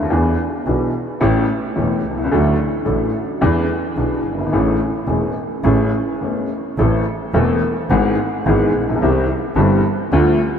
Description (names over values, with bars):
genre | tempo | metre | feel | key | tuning
tango | 108 BPM | 4/4 | rubato | A major, A minor from 6.8 s | A4 = 440 Hz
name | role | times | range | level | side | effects
clear upright piano | accompaniment | 0.0-10.4 s | E1 to A4 | -16 LUFS | left 1 dB | lush chorus
clear double bass | bass | 0.0-10.4 s | E1 to E2 | -21 LUFS | right 2 dB | none
room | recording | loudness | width
wet huge ambient reverb, RT60 5.1 s | dreamy mix soaked in reverb | -15 LUFS | side -8 dB against mid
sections
0.0-6.8 A section; 6.8-10.6 B section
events
break 6.2-6.8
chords
0.1 E7; 1.2 A7; 2.3 D; 3.4 E7; 4.5 Amaj7; 6.8 Am; 7.9 E/G#; 9.0 C